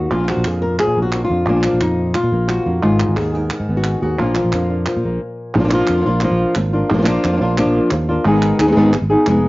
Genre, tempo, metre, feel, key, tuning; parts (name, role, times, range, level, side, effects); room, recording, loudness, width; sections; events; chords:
flamenco; 177 BPM; 4/4; straight; Bb phrygian dominant; A4 = 441 Hz
flamenco guitar; melody; 0.0-9.5 s; Ab2 to Bb4; -16 LUFS; left 1 dB; cassette tape
sustaining fretless electric bass; bass; 0.0-9.5 s; F1 to Bb2; -19 LUFS; equal
flamenco guitar; stabs; 0.1-9.5 s; Eb3 to Ab4; -25 LUFS; right 2 dB; cassette tape
palmas hand claps; percussion; 0.1-9.4 s; -26 LUFS; right 2 dB
moderate studio reverb, RT60 0.6 s; home recording on cassette, nothing above 7.5 kHz; -14 LUFS; side -20 dB against mid
0.0-5.5 A section; 5.5-9.5 B section
stop 5.2-5.5
0.1 Bb; 2.8 Abm; 4.2 Bb; 8.3 Abm